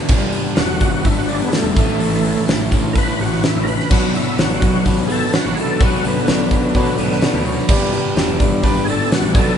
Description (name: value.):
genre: classic rock.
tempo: 126 BPM.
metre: 4/4.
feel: straight.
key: unclear.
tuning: A4 = 441 Hz.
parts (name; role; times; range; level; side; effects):
crunchy overdriven guitar; riff; 0.0-9.6 s; G2 to B3; -23 LUFS; left 1 dB; phaser.
crunchy overdriven guitar; riff; 0.0-9.6 s; G2 to E4; -25 LUFS; equal; none.
fuzz picked electric bass; bass; 0.1-9.6 s; E1 to B2; -24 LUFS; right 1 dB; overdrive.
huge arena drum kit; drums; 0.1-9.5 s; crash cymbal, hi-hat, kick drum, snare drum; -17 LUFS; equal; none.
overdriven tonewheel organ; melody; 0.6-9.6 s; D3 to B4; -22 LUFS; equal; slow rotary speaker, chorus vibrato, tape echo.
warm concert grand piano; accompaniment; 3.9-9.6 s; D4 to D5; -25 LUFS; equal; none.
room: light reverb.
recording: band playing live in one room, nothing above 10.7 kHz.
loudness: -14 LUFS.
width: side -8 dB against mid.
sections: 0.0-9.6 A section.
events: tonewheel organ solo 0.0-9.6.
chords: 0.1 G; 1.8 A; 3.9 Bmadd9; 7.7 G.